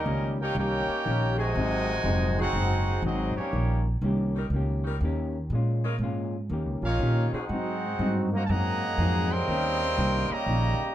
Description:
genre	jazz, big band swing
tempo	121 BPM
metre	4/4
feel	swing 66% on 8ths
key	Eb major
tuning	A4 = 440 Hz
part	bright trumpet section	melody	0.0-3.8, 6.9-10.9 s	Bb3 to C6	-30 LUFS	equal	none
part	clear trombone section	second line	0.0-3.8, 6.8-10.9 s	C3 to G4	-32 LUFS	right 1 dB	none
part	upright bass	bass	0.0-10.8 s	F1 to Bb2	-27 LUFS	right 1 dB	none
part	hollow-body jazz guitar	accompaniment	0.1-10.8 s	Ab2 to G4	-33 LUFS	left 3 dB	none
part	warm saxophone section	sustained chords	1.4-9.7 s	Gb3 to Bb4	-37 LUFS	left 1 dB	none
room	light reverb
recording	none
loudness	-24 LUFS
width	side -12 dB against mid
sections	0.0-10.9 A section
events	none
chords	0.0 Eb7; 1.6 Ab7; 3.5 Eb7; 5.5 Bbm7; 6.5 Eb7; 7.5 Ab7; 9.5 Eb7

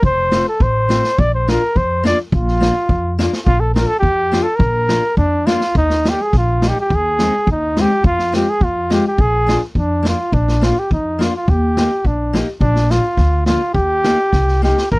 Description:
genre	alpine folk, alpine dance band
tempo	105 BPM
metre	2/4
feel	rubato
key	Bb major, Eb major from 5.8 s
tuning	A4 = 441 Hz
part	mellow trumpet	melody	0.0-15.0 s	D4 to D5	-17 LUFS	equal	none
part	upright bass	bass	0.0-15.0 s	F1 to F2	-18 LUFS	equal	none
part	street-band drum kit	drums	0.0-15.0 s	kick drum, snare drum	-19 LUFS	equal	none
part	fingerpicked steel-string acoustic guitar	accompaniment	0.3-14.8 s	G3 to G4	-19 LUFS	left 2 dB	none
room	little or no reverb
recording	dry, close 1970s-style studio recording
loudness	-13 LUFS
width	side -23 dB against mid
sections	0.0-5.8 A section; 5.8-15.0 B section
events	drum fill 14.3-14.9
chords	0.0 F; 1.2 Bb; 5.8 Eb; 6.9 Ab/Eb; 8.0 Fm; 9.2 Bb; 11.5 Eb; 12.6 Bb; 13.7 Eb

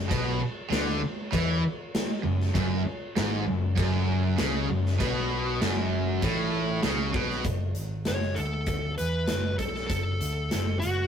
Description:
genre	hard rock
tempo	98 BPM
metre	4/4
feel	straight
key	F# minor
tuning	A4 = 440 Hz
part	cranked stack guitar	riff	0.0-7.4 s	F#2 to E3	-30 LUFS	right 5 dB	overdrive
part	sludgy distorted guitar	riff	0.0-7.4 s	F#2 to E3	-30 LUFS	left 4 dB	overdrive
part	picked electric bass	bass	0.0-11.1 s	F#1 to E2	-30 LUFS	equal	none
part	big rock drum kit	drums	0.1-11.0 s	crash cymbal, hi-hat, kick drum, snare drum	-31 LUFS	equal	none
part	smooth overdriven lead guitar	melody	8.1-11.1 s	F#4 to C#5	-31 LUFS	equal	none
room	light reverb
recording	rough rehearsal-room recording, tube saturation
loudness	-25 LUFS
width	side -8 dB against mid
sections	0.0-7.4 A section; 7.4-11.1 B section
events	none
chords	0.0 F#m

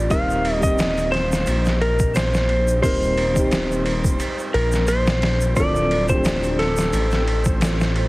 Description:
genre	trip hop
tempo	88 BPM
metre	4/4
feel	swing 55% on 16ths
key	unclear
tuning	A4 = 442 Hz
part	clean lap steel guitar	melody	0.0-7.9 s	A4 to F5	-22 LUFS	equal	tape echo
part	felt-muted upright piano	accompaniment	0.0-8.1 s	F3 to Bb4	-26 LUFS	left 1 dB	tremolo, tape echo
part	dark detuned saw bass	bass	0.0-8.1 s	D1 to Bb1	-22 LUFS	equal	none
part	trip hop sampler-style drum kit	drums	0.1-8.1 s	hi-hat, kick drum, ride cymbal, snare drum	-23 LUFS	equal	overdrive, small room ambience
part	egg shaker	percussion	0.1-7.9 s	none	-36 LUFS	right 1 dB	none
part	backwards swelling texture	texture	6.5-8.1 s	C5	-33 LUFS	equal	built-in reverb
room	light reverb, digital ambience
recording	heavily compressed radio sound, multiband compression, vinyl crackle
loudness	-17 LUFS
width	side -20 dB against mid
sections	0.0-8.1 A section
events	none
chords	0.1 Eb6; 5.6 Dm7

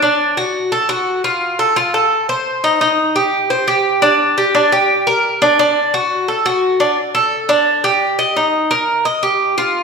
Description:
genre	latin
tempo	173 BPM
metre	4/4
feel	straight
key	G minor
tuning	A4 = 440 Hz
part	Cuban tres	solo	0.0-9.8 s	D4 to Eb5	-13 LUFS	equal	none
room	wet recital hall reverb, RT60 1.4 s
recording	recorded in a church or concert hall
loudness	-13 LUFS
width	side -4 dB against mid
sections	0.0-7.0 A section; 7.0-9.8 B section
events	none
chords	none

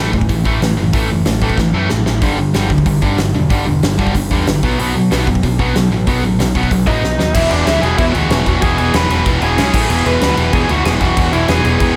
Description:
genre	punk rock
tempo	188 BPM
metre	4/4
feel	straight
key	unclear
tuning	A4 = 440 Hz
part	distorted electric guitar	riff	0.0-12.0 s	E2 to C#4	-22 LUFS	equal	distortion
part	sludgy distorted guitar	riff	0.0-12.0 s	E2 to C#4	-21 LUFS	equal	overdrive
part	overdriven picked electric bass	bass	0.0-11.9 s	E1 to B2	-21 LUFS	equal	none
part	big rock drum kit	drums	0.1-11.9 s	crash cymbal, hi-hat, kick drum, snare drum	-20 LUFS	equal	none
part	lead guitar through a small cranked amp	melody	6.9-12.0 s	D4 to B5	-20 LUFS	equal	overdrive, delay
room	light reverb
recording	none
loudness	-14 LUFS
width	mono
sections	0.0-7.3 A section; 7.3-12.0 B section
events	drum fill 1.6-2.2, 7.0-7.3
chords	0.0 A5; 2.2 G5; 4.6 B; 7.3 E; 9.6 C#5; 9.7 A5; 9.9 E

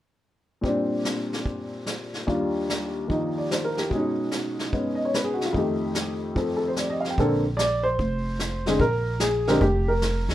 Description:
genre	jazz piano trio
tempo	147 BPM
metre	4/4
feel	swing 67% on 8ths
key	Bb major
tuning	A4 = 440 Hz
part	clear upright piano	melody	0.6-10.3 s	Eb2 to G5	-24 LUFS	equal	none
part	vintage brush drum kit	drums	0.6-10.3 s	brushed snare drum, hi-hat, kick drum, snare drum	-30 LUFS	equal	none
part	upright bass	bass	7.2-10.3 s	F1 to D2	-26 LUFS	equal	none
room	light reverb, small room ambience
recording	rough home demo mix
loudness	-23 LUFS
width	side -13 dB against mid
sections	0.6-7.2 A section; 7.2-10.3 B section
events	none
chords	0.6 Bb69; 2.3 Ebmaj9; 3.9 B69; 5.5 F9; 7.2 Bbadd9; 8.8 Bb7(no3)

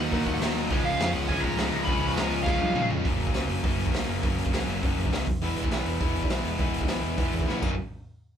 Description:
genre	punk rock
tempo	204 BPM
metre	4/4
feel	straight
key	F# major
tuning	A4 = 439 Hz
part	lead guitar through a small cranked amp	melody	0.0-2.9 s	E#5 to B5	-30 LUFS	equal	overdrive
part	distorted electric guitar	riff	0.0-7.7 s	F#2 to E4	-31 LUFS	left 7 dB	distortion
part	distorted electric guitar	riff	0.0-3.1 s	C#3 to D#4	-33 LUFS	right 2 dB	overdrive
part	sludgy distorted guitar	riff	0.0-7.7 s	F#2 to F#4	-32 LUFS	right 8 dB	overdrive
part	overdriven picked electric bass	bass	0.0-7.8 s	E1 to C#3	-32 LUFS	equal	none
part	raw garage drum kit	drums	0.1-7.7 s	crash cymbal, hi-hat, kick drum, snare drum, toms	-29 LUFS	equal	none
room	moderate studio reverb, RT60 0.6 s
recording	band playing live in one room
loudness	-24 LUFS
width	side -8 dB against mid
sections	0.0-3.1 A section; 3.1-7.8 B section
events	drum fill 2.5-3.1, 7.5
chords	0.0 D#m; 0.7 C#; 3.1 F#; 5.3 E; 7.6 F#; 7.8 N.C.

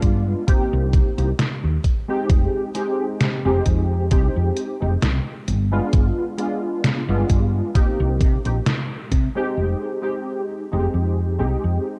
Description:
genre	vaporwave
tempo	66 BPM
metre	4/4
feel	swing 54% on 16ths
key	F minor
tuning	A4 = 438 Hz
part	warbly lo-fi synth keys	accompaniment	0.0-12.0 s	Ab3 to G4	-26 LUFS	equal	ensemble chorus, analog delay
part	woody fretless electric bass	bass	0.0-11.8 s	F1 to C3	-23 LUFS	equal	analog chorus
part	detuned 8-bit digital drum machine	drums	0.0-9.3 s	hi-hat, snare drum	-26 LUFS	equal	vintage 12-bit sampler grit
part	electronic kick drum	drums	0.0-9.3 s	none	-21 LUFS	equal	vintage 12-bit sampler grit
room	light reverb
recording	dark, warm production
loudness	-21 LUFS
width	mono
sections	0.0-9.6 A section; 9.6-12.0 B section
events	band accent 8.7-9.1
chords	0.5 Cm7; 2.3 Fm7; 5.5 G7b9; 7.8 Cm7; 9.6 Fm7

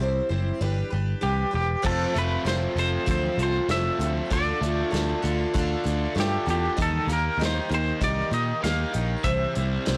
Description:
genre	folk rock and heartland rock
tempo	97 BPM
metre	4/4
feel	straight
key	unclear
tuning	A4 = 444 Hz
part	twangy electric guitar	melody	0.0-10.0 s	G4 to F5	-31 LUFS	equal	tremolo
part	picked twelve-string acoustic guitar	accompaniment	0.0-10.0 s	C3 to C5	-32 LUFS	equal	none
part	picked electric bass	bass	0.0-10.0 s	E1 to Bb2	-29 LUFS	equal	none
part	biting overdriven guitar	riff	1.8-10.0 s	F2 to Eb4	-34 LUFS	equal	none
part	natural country drum kit	drums	1.8-10.0 s	crash cymbal, hi-hat, kick drum, snare drum	-33 LUFS	equal	none
room	light reverb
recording	blown-out, overdriven recording, overdrive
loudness	-25 LUFS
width	mono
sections	0.0-1.8 A section; 1.8-10.0 A section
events	none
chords	0.0 C; 0.6 G; 1.8 F; 4.3 Dm; 6.8 Eb; 9.2 C

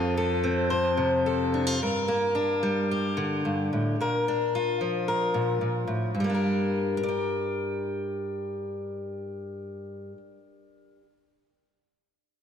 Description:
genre	folk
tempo	110 BPM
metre	4/4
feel	straight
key	G minor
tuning	A4 = 445 Hz
part	fingerpicked steel-string acoustic guitar	accompaniment	0.0-11.1 s	G2 to G5	-25 LUFS	left 1 dB	slapback echo
part	warm baby grand piano	bass	0.0-1.8 s	F2	-29 LUFS	right 1 dB	none
room	wet lush hall reverb, RT60 2.1 s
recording	big arena sound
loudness	-25 LUFS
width	side -8 dB against mid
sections	0.0-6.2 A section; 6.2-10.5 B section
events	none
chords	0.0 F; 1.8 Gm; 4.0 Bb; 6.2 Gm

